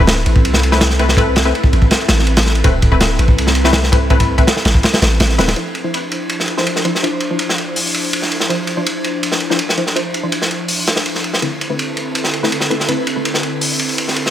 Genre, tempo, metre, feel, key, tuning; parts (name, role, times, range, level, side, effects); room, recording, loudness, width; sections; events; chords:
drum and bass, jungle; 164 BPM; 4/4; straight; D dorian; A4 = 440 Hz
airy breathy pad; sustained chords; 0.0-14.3 s; D3 to C5; -22 LUFS; equal; chorus, vintage 12-bit sampler grit
filtered dub chord stab; stabs; 0.0-13.2 s; D3 to C5; -21 LUFS; left 2 dB; chorus, cassette tape, dub echo
long sustained 808-style bass; bass; 0.0-5.5 s; D1 to C2; -16 LUFS; equal
crunchy breakbeat drum kit; drums; 0.0-14.3 s; hi-hat, kick drum, ride cymbal, snare drum; -15 LUFS; equal; high-pass filter on kick, high-pass filter on cymbals, high-pass filter on hats, high-pass filter on snare, high-pass filter on room
light reverb, studio reverb; -13 LUFS; side -11 dB against mid
0.0-5.6 A section; 5.6-14.3 B section
drop 0.0-5.6
0.0 Amadd9/D; 5.6 Dm9; 11.4 Amadd9/D